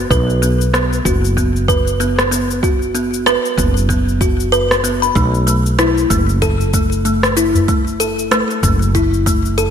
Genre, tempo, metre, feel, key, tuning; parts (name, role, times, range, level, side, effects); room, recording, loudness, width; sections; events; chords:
organic downtempo; 95 BPM; 4/4; swing 58% on 16ths; A4 = 440 Hz
woody fretless electric bass; bass; 0.0-9.7 s; F#1 to B1; -18 LUFS; equal; sidechain pumping
kalimba; arpeggios; 0.1-9.7 s; A3 to B5; -16 LUFS; equal; low-pass filter, ping-pong delay
electronic cabasa and rim click; drums; 0.1-9.7 s; -20 LUFS; left 1 dB; overdrive, gated reverb
electronic kick drum; drums; 0.1-9.4 s; -19 LUFS; equal; overdrive
udu; percussion; 6.6-8.8 s; -20 LUFS; left 1 dB
moderate lush hall reverb, RT60 2.4 s; bright 1980s-style digital production; -13 LUFS; side -8 dB against mid
0.0-9.7 A section
0.0 B5; 5.2 A5